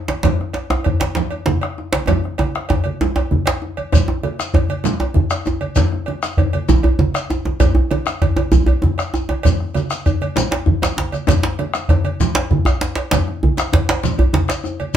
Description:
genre	west african traditional, West African drum ensemble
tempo	130 BPM (dotted quarters)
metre	12/8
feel	straight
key	none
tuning	none
part	congas	percussion	0.1-14.9 s	none	-23 LUFS	right 4 dB	none
part	cowbell	percussion	0.1-14.9 s	none	-27 LUFS	right 3 dB	none
part	djembe	percussion	0.1-15.0 s	none	-18 LUFS	right 1 dB	none
part	bombo	percussion	0.2-15.0 s	none	-18 LUFS	right 1 dB	none
part	djembe	percussion	0.3-15.0 s	none	-23 LUFS	left 4 dB	none
part	shekere	percussion	3.9-15.0 s	none	-26 LUFS	left 5 dB	none
room	wet studio reverb, RT60 0.5 s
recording	heard from further back in the room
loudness	-16 LUFS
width	side -10 dB against mid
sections	0.0-3.9 A section; 3.9-15.0 B section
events	drum fill 2.1-3.9, 10.7-11.3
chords	none

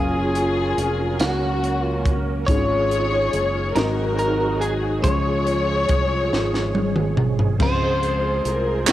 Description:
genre	slow gospel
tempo	47 BPM (dotted quarters)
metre	6/8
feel	straight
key	Db major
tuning	A4 = 441 Hz
part	clean electric guitar	melody	0.0-8.9 s	Gb4 to Db5	-27 LUFS	right 2 dB	cassette tape
part	warm studio string section	melody	0.0-8.9 s	Bb3 to Db5	-23 LUFS	left 2 dB	cassette tape, analog delay
part	dark upright piano	accompaniment	0.0-8.9 s	Ab2 to C6	-30 LUFS	left 5 dB	none
part	bright tonewheel organ	sustained chords	0.0-8.9 s	F3 to C5	-30 LUFS	right 8 dB	slow rotary speaker, chorus vibrato
part	fingered electric bass	bass	0.0-8.9 s	F1 to Db2	-26 LUFS	equal	none
part	crisp fusion drum kit	drums	0.4-8.9 s	crash cymbal, hi-hat, kick drum, snare drum, toms	-23 LUFS	equal	cassette tape
part	group handclap	percussion	8.9 s	none	-16 LUFS	right 7 dB	none
room	light reverb, studio reverb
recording	home recording on cassette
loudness	-18 LUFS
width	side -13 dB against mid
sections	0.0-7.6 A section; 7.6-8.9 A section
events	drum fill 6.3-7.6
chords	0.0 Gbmaj7; 2.5 Db/Ab; 3.8 Ab7; 5.0 Dbmaj7

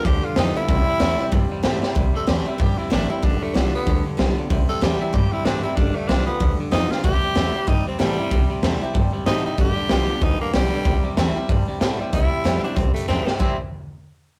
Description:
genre	rockabilly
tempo	189 BPM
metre	4/4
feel	swing 60% on 8ths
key	C major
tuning	A4 = 440 Hz
part	raspy tenor saxophone	melody	0.0-13.6 s	G3 to A4	-28 LUFS	equal	none
part	picked steel-string acoustic guitar	accompaniment	0.0-13.6 s	G2 to F4	-31 LUFS	equal	none
part	twangy electric guitar	riff	0.0-13.6 s	G2 to E4	-31 LUFS	equal	none
part	raw garage drum kit	drums	0.0-13.5 s	crash cymbal, hi-hat, kick drum, snare drum	-25 LUFS	equal	none
part	upright bass	bass	0.1-13.6 s	G1 to A2	-26 LUFS	equal	none
room	light reverb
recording	rough rehearsal-room recording, warm saturation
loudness	-21 LUFS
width	mono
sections	0.0-2.0 A section; 2.0-12.1 B section; 12.1-13.4 C section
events	tenor saxophone solo 0.0-2.0; drum fill 1.8, 6.9, 13.1-13.4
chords	0.0 G7; 0.7 C; 3.2 G7; 4.5 C; 5.8 G7; 7.0 C; 9.6 G7; 10.9 C

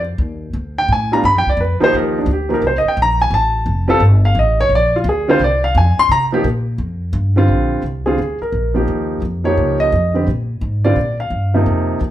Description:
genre	jazz piano trio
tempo	173 BPM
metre	4/4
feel	swing 65% on 8ths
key	unclear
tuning	A4 = 440 Hz
part	upright bass	bass	0.0-12.1 s	F1 to C3	-17 LUFS	equal	none
part	warm grand piano	melody	0.8-12.0 s	C3 to C6	-15 LUFS	equal	none
room	moderate large studio reverb, RT60 0.8 s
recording	band playing live in one room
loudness	-13 LUFS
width	side -13 dB against mid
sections	0.0-7.5 A section; 7.5-12.1 B section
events	grand piano solo 0.0-7.5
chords	0.0 F7(no3); 0.5 D5; 1.2 G5; 1.9 Cm7; 3.3 Fadd9; 4.7 Bbadd9; 6.1 C7(no3); 6.8 Fsus2; 7.5 Bb9; 8.9 Eb9; 10.3 Bb7

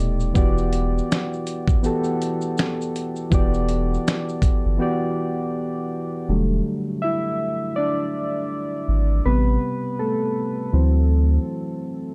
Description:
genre	lo-fi hip hop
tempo	81 BPM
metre	4/4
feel	swing 60% on 16ths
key	E minor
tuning	A4 = 439 Hz
part	soft electric-piano-like synth keys	accompaniment	0.0-12.1 s	B2 to E5	-26 LUFS	equal	chorus, cassette tape
part	soft dub sub bass	bass	0.0-11.4 s	D#1 to D2	-22 LUFS	equal	none
part	dusty soul sampler-style drum kit	drums	0.2-4.6 s	finger snaps, hi-hat, kick drum, shaker, snare drum	-23 LUFS	equal	none
room	light reverb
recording	dark, warm production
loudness	-22 LUFS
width	mono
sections	0.0-6.3 A section; 6.3-12.1 B section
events	break 4.8-6.3; synth keys solo 6.3-12.1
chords	0.4 Em7; 6.3 Em11; 9.2 Am9; 10.7 D9

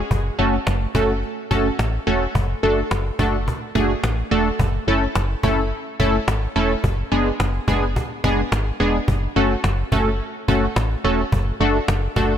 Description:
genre	synth-pop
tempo	107 BPM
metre	4/4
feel	straight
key	F# minor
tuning	A4 = 439 Hz
part	solid FM bass	bass	0.0-12.4 s	E1 to A1	-22 LUFS	equal	none
part	cajon	drums	0.1-12.3 s	none	-25 LUFS	equal	none
part	funky polysynth comp	accompaniment	0.4-12.3 s	G#3 to A4	-21 LUFS	equal	chorus
room	light reverb, small room ambience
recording	none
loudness	-18 LUFS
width	side -9 dB against mid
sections	0.1-12.4 A section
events	none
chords	0.1 F#m; 2.4 D/F#; 4.6 A/F#; 6.8 G#dim/F#; 9.1 F#m; 11.3 D/F#

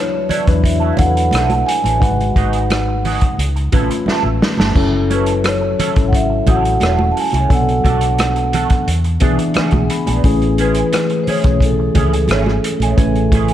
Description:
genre	lush 1970s-style soul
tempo	88 BPM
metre	4/4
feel	straight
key	A major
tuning	A4 = 440 Hz
part	vibraphone with soft mallets	melody	0.0-13.5 s	A4 to A5	-20 LUFS	right 1 dB	none
part	mellow tine electric piano	accompaniment	0.0-13.5 s	E3 to B5	-19 LUFS	left 2 dB	phaser
part	electric guitar through a small old amp	riff	0.1-13.5 s	E3 to A4	-25 LUFS	right 5 dB	wah, ensemble chorus
part	vintage muted fingered electric bass	bass	0.3-13.5 s	E1 to E2	-18 LUFS	equal	none
part	vintage drum kit	drums	0.3-13.5 s	hi-hat, kick drum, rim click, snare drum, splash cymbal	-18 LUFS	equal	none
part	congas	percussion	0.3-13.5 s	none	-26 LUFS	right 3 dB	none
room	light reverb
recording	dark, warm production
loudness	-13 LUFS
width	side -11 dB against mid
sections	0.0-13.5 A section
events	drum fill 4.1-4.8; tine electric piano fill 8.9-10.2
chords	0.0 D69; 2.0 G#m7; 3.4 C#7alt; 4.8 F#m7; 7.5 Bm7; 8.9 E7; 10.2 Amaj7

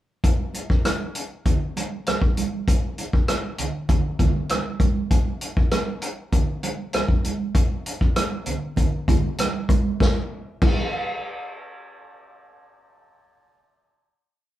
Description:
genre	soul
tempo	98 BPM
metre	4/4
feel	straight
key	none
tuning	none
part	vintage drum kit	drums	0.2-10.8 s	crash cymbal, hi-hat, kick drum, rim click, snare drum	-21 LUFS	equal	none
part	congas	percussion	0.2-10.8 s	none	-28 LUFS	right 4 dB	none
room	moderate studio reverb, RT60 0.8 s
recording	band playing live in one room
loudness	-21 LUFS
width	side -14 dB against mid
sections	0.2-10.0 verse; 10.0-12.5 final hit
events	none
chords	none

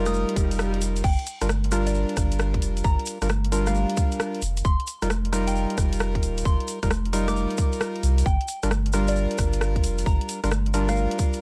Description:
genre	UK garage, two-step garage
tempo	133 BPM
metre	4/4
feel	swing 66% on 16ths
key	G minor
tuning	A4 = 438 Hz
part	percussive organ stab	stabs	0.0-11.4 s	G3 to Bb4	-30 LUFS	equal	subtle chorus
part	saturated sub bass	bass	0.0-11.1 s	Eb1 to C2	-27 LUFS	equal	none
part	soft synth bell	melody	0.1-11.0 s	D5 to Eb6	-36 LUFS	equal	chorus, phaser, tape echo
part	garage drum kit	drums	0.1-11.4 s	congas, crash cymbal, hi-hat, rim click	-33 LUFS	equal	none
part	tube shaker	percussion	0.1-11.4 s	none	-39 LUFS	equal	none
part	swell	sound effects	0.4-1.0 s	none	-38 LUFS	equal	none
part	electronic kick drum	drums	0.4-11.3 s	none	-26 LUFS	equal	none
room	little or no reverb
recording	dry, gritty hardware recording, vinyl crackle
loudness	-24 LUFS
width	mono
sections	0.0-11.4 A section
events	swell 0.4-1.0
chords	0.0 F9sus4; 1.0 Gm7; 4.4 F9sus4; 8.3 Gm7

